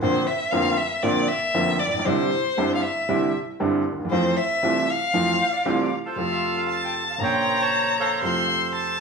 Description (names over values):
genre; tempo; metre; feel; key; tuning
tango; 117 BPM; 4/4; rubato; F major; A4 = 441 Hz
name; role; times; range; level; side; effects
rich violin; second line; 0.0-9.0 s; C5 to C6; -23 LUFS; left 3 dB; none
clear baby grand piano; accompaniment; 0.0-9.0 s; F1 to F4; -24 LUFS; right 2 dB; none
bandoneon; melody; 5.4-9.0 s; F4 to A5; -25 LUFS; right 3 dB; none
room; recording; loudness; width
wet studio reverb, RT60 1.0 s; band playing live in one room, studio ambience; -20 LUFS; side -5 dB against mid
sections
0.0-6.2 A section; 6.2-9.0 B section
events
violin solo 0.0-6.2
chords
0.0 Bbadd9; 2.1 Cadd9; 4.1 Fmaj7; 6.2 F; 7.2 Bbmadd9; 8.2 F